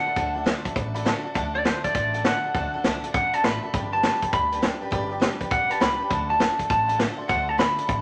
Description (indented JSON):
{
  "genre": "rockabilly",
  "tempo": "202 BPM",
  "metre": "4/4",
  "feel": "swing 64% on 8ths",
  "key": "D mixolydian",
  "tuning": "A4 = 440 Hz",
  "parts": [
    { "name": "electric guitar at the edge of break-up", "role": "melody", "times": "0.0-8.0 s", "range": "C5 to B5", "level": "-26 LUFS", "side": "equal", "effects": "spring reverb" },
    { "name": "picked steel-string acoustic guitar", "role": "accompaniment", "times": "0.0-8.0 s", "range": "D3 to B4", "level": "-35 LUFS", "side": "equal", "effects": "none" },
    { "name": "tack piano", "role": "accompaniment", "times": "0.1-8.0 s", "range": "D5 to D6", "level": "-37 LUFS", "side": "equal", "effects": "none" },
    { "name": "upright bass", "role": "bass", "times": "0.1-8.0 s", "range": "G1 to D2", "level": "-37 LUFS", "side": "equal", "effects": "none" },
    { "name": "vintage drum kit", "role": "drums", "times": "0.2-8.0 s", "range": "hi-hat, kick drum, snare drum", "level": "-28 LUFS", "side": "equal", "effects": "none" }
  ],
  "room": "moderate studio ambience, RT60 0.5 s",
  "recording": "none",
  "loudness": "-24 LUFS",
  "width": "mono",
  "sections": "0.0-8.0 A section",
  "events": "none",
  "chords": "0.0 D; 3.7 G; 6.1 D"
}